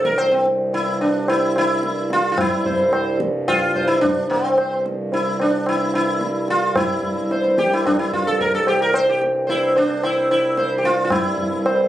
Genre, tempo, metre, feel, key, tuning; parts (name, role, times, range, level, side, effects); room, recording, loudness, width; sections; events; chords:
indian classical, Hindustani; 110 BPM; 4/4; straight; C raga khamaj; A4 = 441 Hz
sitar; melody; 0.0-11.9 s; C4 to C5; -18 LUFS; equal
pedal harmonium; drone; 0.0-11.9 s; C2 to G2; -25 LUFS; right 1 dB
tabla; percussion; 0.0-11.9 s; -24 LUFS; equal
light reverb; recorded on a phone in the room, club reverb; -17 LUFS; side -12 dB against mid
0.0-11.1 A section